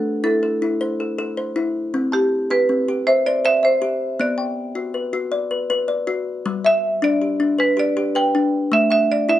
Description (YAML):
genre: southern african traditional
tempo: 106 BPM (dotted quarters)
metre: 12/8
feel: straight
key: G major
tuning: A4 = 441 Hz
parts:
  - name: marimba with hard mallets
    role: melody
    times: 0.0-9.4 s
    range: G4 to G5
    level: -19 LUFS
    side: right 2 dB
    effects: none
  - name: kalimba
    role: arpeggios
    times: 0.0-9.4 s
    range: G3 to A5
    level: -20 LUFS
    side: left 3 dB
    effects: none
room: light reverb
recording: none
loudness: -17 LUFS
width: side -12 dB against mid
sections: 0.0-9.4 A section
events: none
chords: 0.0 Am; 1.9 C; 4.2 Bm; 6.5 G; 8.7 A5